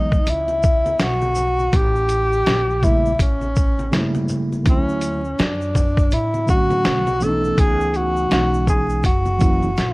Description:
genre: hip hop, jazz-hop.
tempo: 82 BPM.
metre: 4/4.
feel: swing 62% on 16ths.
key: unclear.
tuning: A4 = 440 Hz.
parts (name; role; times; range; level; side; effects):
breathy tenor saxophone; melody; 0.0-9.9 s; C#4 to A4; -20 LUFS; equal; none.
mellow tine electric piano; accompaniment; 0.0-9.7 s; C#3 to F#4; -23 LUFS; right 1 dB; medium stereo tremolo.
upright bass; bass; 0.0-9.9 s; F#1 to A2; -24 LUFS; equal; none.
dusty soul sampler-style drum kit; drums; 0.1-9.9 s; hi-hat, kick drum, shaker, snare drum; -19 LUFS; equal; none.
tube shaker and congas; percussion; 0.1-9.9 s; none; -33 LUFS; left 2 dB; none.
room: light reverb.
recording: worn, warbling old tape, cassette tape, vinyl crackle, warbly pitch drift.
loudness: -16 LUFS.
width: side -23 dB against mid.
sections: 0.0-9.9 A section.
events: drum fill 9.8.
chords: 0.0 Emaj7sus2; 1.7 A7b9; 4.7 Dmaj7; 7.6 C#m7; 9.0 F#7.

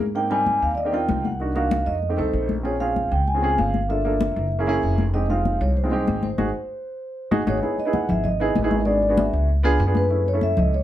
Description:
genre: Afro-Cuban jazz.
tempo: 193 BPM.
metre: 4/4.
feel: straight.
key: unclear.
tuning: A4 = 440 Hz.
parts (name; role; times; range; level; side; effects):
warm upright piano; accompaniment; 0.0-10.7 s; G3 to A4; -25 LUFS; right 2 dB; none.
upright bass; bass; 0.0-10.8 s; F1 to Ab2; -24 LUFS; equal; none.
congas; percussion; 0.0-10.8 s; none; -26 LUFS; left 3 dB; none.
vibraphone with soft mallets; melody; 0.2-10.8 s; B4 to Ab5; -25 LUFS; equal; none.
room: moderate studio reverb, RT60 0.6 s.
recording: heard from further back in the room.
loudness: -19 LUFS.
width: side -12 dB against mid.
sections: 0.0-7.6 A section; 7.6-10.8 B section.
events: band accent 6.4-7.6.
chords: 0.2 Abmaj7; 1.4 Cm7b5; 2.0 F7; 2.6 Bbm7; 3.9 Gm7; 4.5 Gb9; 5.1 Fm9; 6.4 Ab7; 7.6 Emaj7; 8.9 G#m7b5; 9.5 C#7b9; 10.1 F#m7.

